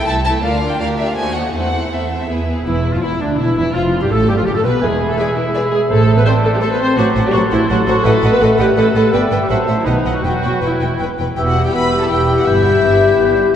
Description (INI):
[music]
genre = quick classical-period movement for symphony orchestra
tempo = 166 BPM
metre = 3/4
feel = straight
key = A minor, E minor from 7.0 s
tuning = A4 = 440 Hz
[part]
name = warm chamber violin section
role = melody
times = 0.0-13.4 s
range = D4 to B5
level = -23 LUFS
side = left 3 dB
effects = none
[part]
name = rich chamber violin section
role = second line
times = 0.0-13.3 s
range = D4 to E5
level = -25 LUFS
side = left 1 dB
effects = none
[part]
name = rich chamber viola section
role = accompaniment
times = 0.0-13.5 s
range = E3 to C5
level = -19 LUFS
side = right 1 dB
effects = none
[part]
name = dark chamber double bass section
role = bass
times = 0.0-13.5 s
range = E1 to E2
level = -20 LUFS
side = right 2 dB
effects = none
[part]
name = rich chamber cello section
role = bass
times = 0.0-13.5 s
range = D2 to G4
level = -22 LUFS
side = right 1 dB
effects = none
[part]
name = clear clarinet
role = second line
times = 2.7-13.5 s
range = D4 to E5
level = -24 LUFS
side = left 1 dB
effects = none
[part]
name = silver concert flute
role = second line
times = 2.7-13.5 s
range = D4 to G6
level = -24 LUFS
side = left 1 dB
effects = none
[part]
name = warm oboe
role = second line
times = 2.7-13.5 s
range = D4 to A5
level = -25 LUFS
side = equal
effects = none
[part]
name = warm French horn section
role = sustained chords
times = 2.7-13.6 s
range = D3 to G4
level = -19 LUFS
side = left 3 dB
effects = none
[sound]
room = wet church reverb, RT60 2.9 s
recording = dark, warm production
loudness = -13 LUFS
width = side -9 dB against mid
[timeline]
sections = 0.0-2.7 A section; 2.7-11.4 A section; 11.4-13.6 B section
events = none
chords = 0.4 Bb/D; 1.2 D#dim7; 1.5 Am/E; 2.3 E; 2.7 Dmadd9/E; 3.8 G9/F; 4.8 E; 5.9 Am; 7.0 F#dim/A; 8.0 B7/A; 9.1 Em; 9.5 F#m7b5; 9.9 B; 10.2 Em; 12.5 Em/G